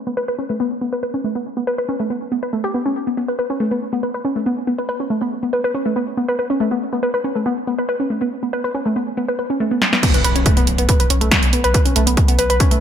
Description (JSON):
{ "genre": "driving peak-time techno", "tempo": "140 BPM", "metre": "4/4", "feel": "straight", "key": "unclear", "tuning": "A4 = 439 Hz", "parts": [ { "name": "warbly dusty pluck", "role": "riff", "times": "0.1-12.8 s", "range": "A3 to B4", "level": "-19 LUFS", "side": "equal", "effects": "chorus, sidechain pumping, digital delay" }, { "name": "techno drum kit", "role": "drums", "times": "9.8-12.8 s", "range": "crash cymbal, hi-hat, snare drum", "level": "-18 LUFS", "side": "right 2 dB", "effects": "sidechain pumping on hats, sidechain pumping on cymbals, gated reverb" }, { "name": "electronic kick drum", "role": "drums", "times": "10.0-12.7 s", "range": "none", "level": "-16 LUFS", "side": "equal", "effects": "none" }, { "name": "impact", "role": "sound effects", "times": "10.0-11.7 s", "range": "none", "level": "-26 LUFS", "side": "equal", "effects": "none" }, { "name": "saturated sub bass", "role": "bass", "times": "10.1-12.8 s", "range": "B1", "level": "-21 LUFS", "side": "equal", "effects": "overdrive, sidechain pumping, low-pass filter" } ], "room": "moderate lush hall reverb, RT60 1.9 s", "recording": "bright 1980s-style digital production", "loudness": "-16 LUFS", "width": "side -9 dB against mid", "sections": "0.0-10.0 A section; 10.0-12.8 B section", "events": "filter sweep on synth arpeggio sound 0.0-10.0; drum fill 9.8; drop 10.0-12.8; impact 10.0-11.7", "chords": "0.0 N.C.; 10.0 B5" }